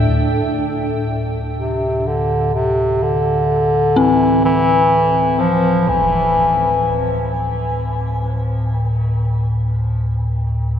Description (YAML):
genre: dark ambient drone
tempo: free time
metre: none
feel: none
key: unclear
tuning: A4 = 440 Hz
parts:
  - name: deep rumbling drone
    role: drone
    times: 0.0-10.8 s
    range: D2 to A2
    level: -20 LUFS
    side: left 1 dB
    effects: built-in reverb
  - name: warm bass clarinet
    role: melody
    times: 1.6-7.3 s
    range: C3 to F3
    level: -16 LUFS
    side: left 1 dB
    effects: shimmer reverb, diffuse ambient delay
  - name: dark detuned synth bell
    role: arpeggios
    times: 4.0-10.8 s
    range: C4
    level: -21 LUFS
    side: left 3 dB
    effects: chorus, phaser, shimmer reverb, diffuse ambient delay
  - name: impact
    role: percussion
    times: 5.9-6.1 s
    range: none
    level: -32 LUFS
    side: right 1 dB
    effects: low-pass filter on sfx
room: wet cathedral reverb, RT60 5.5 s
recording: none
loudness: -15 LUFS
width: side -9 dB against mid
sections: 0.1-10.8 A section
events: fade-in on impacts and reversed cymbals 0.1-10.8; filter sweep on synth drone 0.1-10.8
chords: 0.1 Dsus2